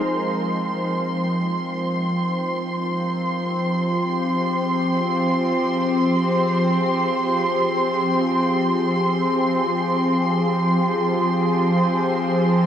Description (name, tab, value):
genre	ambient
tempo	free time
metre	none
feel	none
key	F minor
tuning	A4 = 440 Hz
part	shimmering ambient pad	sustained chords	0.0-12.7 s	F3 to C5	-24 LUFS	equal	chorus, built-in reverb
part	bowed-like drone	drone	0.0-12.7 s	F3 to C4	-22 LUFS	equal	built-in reverb, phaser
part	muted studio violin section	texture	0.0-12.7 s	C6	-24 LUFS	right 2 dB	none
room	wet huge ambient reverb, RT60 8.0 s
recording	small room ambience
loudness	-19 LUFS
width	side -9 dB against mid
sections	0.1-12.7 A section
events	fade-in on ambient pad 0.1-12.7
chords	0.0 Fm7